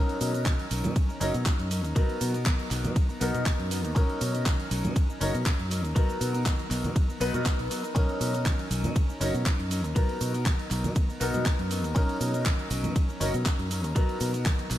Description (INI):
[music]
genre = filtered disco house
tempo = 120 BPM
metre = 4/4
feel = swing 53% on 16ths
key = B major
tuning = A4 = 440 Hz
[part]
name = bright grand piano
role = accompaniment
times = 0.0-14.8 s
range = B3 to B4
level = -33 LUFS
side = left 1 dB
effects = phaser, sidechain pumping
[part]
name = electric guitar with an envelope filter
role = riff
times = 0.0-14.8 s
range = F#3 to A#4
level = -35 LUFS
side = left 1 dB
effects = sidechain pumping
[part]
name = fingered electric bass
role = bass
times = 0.0-14.8 s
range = F#1 to B2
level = -30 LUFS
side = equal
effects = tube saturation, sidechain pumping
[part]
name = house drum kit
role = drums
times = 0.1-14.8 s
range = handclaps, hi-hat, ride cymbal, shaker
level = -35 LUFS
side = right 1 dB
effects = none
[part]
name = tambourine and congas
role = percussion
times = 0.1-14.8 s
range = none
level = -40 LUFS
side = right 2 dB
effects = sidechain pumping on perc
[part]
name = electronic kick drum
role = drums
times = 0.5-14.6 s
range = none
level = -25 LUFS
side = equal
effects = none
[sound]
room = light reverb, digital ambience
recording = none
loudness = -25 LUFS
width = side -13 dB against mid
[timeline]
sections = 0.0-14.8 A section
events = none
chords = 0.0 Bmaj9; 2.0 Bmaj7; 4.0 Bmaj9; 6.0 Bmaj7; 8.0 Bmaj9; 10.0 Bmaj7; 12.0 Bmaj9; 14.0 Bmaj7